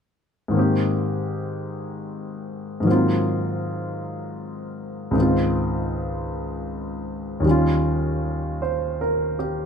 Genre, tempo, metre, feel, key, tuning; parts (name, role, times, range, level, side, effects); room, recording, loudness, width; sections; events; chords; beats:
jazz; 52 BPM; 4/4; swing 68% on 8ths; Ab major; A4 = 439 Hz
clear grand piano; accompaniment; 0.5-9.7 s; Db2 to C5; -22 LUFS; equal
moderate studio ambience, RT60 0.5 s; -21 LUFS; side -7 dB against mid
0.5-9.7 A section
0.5 Abmaj7; 2.9 Ab13; 5.1 Dbmaj9; 7.4 Eb9
| 0.54 1.71 2.86 4.01 | 5.15 6.29 7.44 8.60